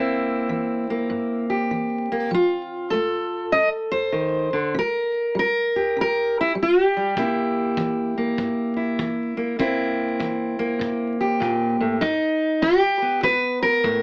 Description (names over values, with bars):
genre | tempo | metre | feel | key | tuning
acoustic country blues, solo or duo | 99 BPM | 4/4 | swing 65% on 8ths | C mixolydian | A4 = 443 Hz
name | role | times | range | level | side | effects
fingerpicked steel-string acoustic guitar | melody | 0.0-14.0 s | G2 to Eb5 | -22 LUFS | equal | none
kick drum | drums | 7.2-14.0 s | none | -37 LUFS | equal | none
room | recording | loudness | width
moderate studio reverb, RT60 0.5 s | vinyl crackle, AM radio sound | -23 LUFS | mono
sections
0.0-14.0 A section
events
none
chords
0.0 C7; 2.3 F7; 4.7 C7; 12.0 G